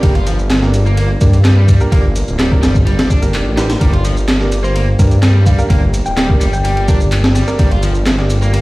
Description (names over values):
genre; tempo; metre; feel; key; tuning
breakbeat, breaks; 127 BPM; 4/4; straight; G minor; A4 = 440 Hz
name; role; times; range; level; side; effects
mellow tonewheel organ; sustained chords; 0.0-8.6 s; Bb3 to G4; -26 LUFS; equal; slow rotary speaker, vintage 12-bit sampler grit, sidechain pumping
overdriven electric guitar; riff; 0.0-8.6 s; F3 to F4; -24 LUFS; equal; digital delay
clear concert grand piano; stabs; 0.0-8.3 s; Bb3 to Bb4; -23 LUFS; right 2 dB; vintage 12-bit sampler grit, digital delay
detuned saw bass; bass; 0.0-8.6 s; D1 to G2; -13 LUFS; equal; none
breakbeat sampler-style drum kit; drums; 0.0-8.6 s; kick drum, ride cymbal, snare drum; -14 LUFS; equal; none
electronic shaker and handclaps; drums; 0.0-8.6 s; none; -27 LUFS; equal; none
thumb-piano-like synth pluck; melody; 4.6-6.7 s; C5 to G5; -23 LUFS; left 1 dB; chorus, phaser, telephone sound, cassette tape, digital delay
room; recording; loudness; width
little or no reverb; played on a big sound system in a bare room, stone room reverb, vinyl crackle; -10 LUFS; side -20 dB against mid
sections
0.0-8.6 A section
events
none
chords
0.0 Gm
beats
| 0.03 0.50 0.98 1.45 | 1.92 2.39 2.87 3.34 | 3.81 4.28 4.76 5.23 | 5.70 6.17 6.64 7.12 | 7.59 8.06 8.54